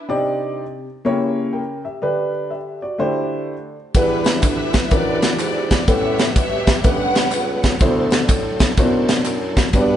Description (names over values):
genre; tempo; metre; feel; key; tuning
uptempo gospel; 124 BPM; 4/4; swing 65% on 8ths; unclear; A4 = 442 Hz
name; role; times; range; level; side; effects
warm studio string section; melody; 0.0, 3.9-7.8 s; D4 to F#5; -24 LUFS; left 1 dB; none
dark grand piano; accompaniment; 0.1-10.0 s; G2 to G5; -21 LUFS; equal; none
bright tonewheel organ; sustained chords; 3.9-10.0 s; E3 to F#5; -28 LUFS; right 2 dB; slow rotary speaker, overdrive, chorus vibrato
dark bassoon; bass; 3.9-10.0 s; C#2 to B2; -23 LUFS; equal; none
crisp fusion drum kit; drums; 3.9-9.9 s; kick drum, ride cymbal, snare drum; -18 LUFS; equal; none
tambourine and handclaps; percussion; 3.9-9.9 s; none; -34 LUFS; right 1 dB; none
room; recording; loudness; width
moderate stone room reverb, RT60 1.5 s; band playing live in one room, nothing above 10.6 kHz; -16 LUFS; side -10 dB against mid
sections
0.0-10.0 A section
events
none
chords
0.1 Cmadd9; 1.1 C#dim7; 2.0 G/D; 3.0 D9sus4; 3.9 Em9; 5.9 A13; 7.8 D13